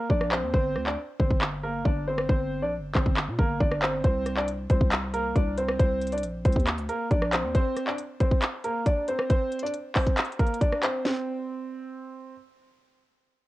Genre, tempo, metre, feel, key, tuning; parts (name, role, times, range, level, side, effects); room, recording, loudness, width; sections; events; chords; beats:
hip hop, trap; 137 BPM; 4/4; half-time; A4 = 439 Hz
warm concert grand piano; melody; 0.0-12.3 s; Bb3 to D5; -28 LUFS; equal; cassette tape, tape echo
growling 808-style bass; bass; 0.1-7.5 s; G1 to Bb2; -31 LUFS; equal
trap drum kit; drums; 0.1-11.2 s; handclaps, hi-hat, kick drum, rim click, snare drum; -24 LUFS; equal
little or no reverb; home recording on cassette; -24 LUFS; side -17 dB against mid
0.0-11.1 A section; 11.1-13.5 B section
break 0.0-4.0
0.0 Cm7; 0.5 Gm; 4.0 C7(no3); 7.5 Bbadd9; 11.1 N.C.
0.10 | 0.54 0.98 1.42 1.85 | 2.29 2.73 3.17 3.61 | 4.04 4.48 4.92 5.36 | 5.79 6.23 6.67 7.11 | 7.55 7.99 8.42 8.86 | 9.30 9.74 10.18 10.61 | 11.05 11.49 11.93